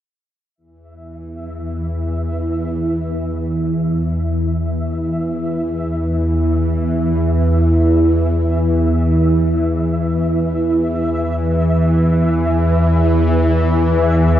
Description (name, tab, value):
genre	ambient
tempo	free time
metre	none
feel	none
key	unclear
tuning	A4 = 440 Hz
part	bowed-like drone	drone	1.1-14.4 s	E2 to E3	-15 LUFS	equal	built-in reverb, phaser
part	flickering grainy texture	texture	1.0-14.4 s	E5	-29 LUFS	equal	built-in reverb, shimmer reverb
room	wet huge ambient reverb, RT60 7.6 s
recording	worn, warbling old tape, cassette tape, warbly pitch drift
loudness	-15 LUFS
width	side -11 dB against mid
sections	0.6-14.4 A section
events	fade-in on synth texture 0.6-14.4; filter sweep on synth drone 0.6-14.4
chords	none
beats	free time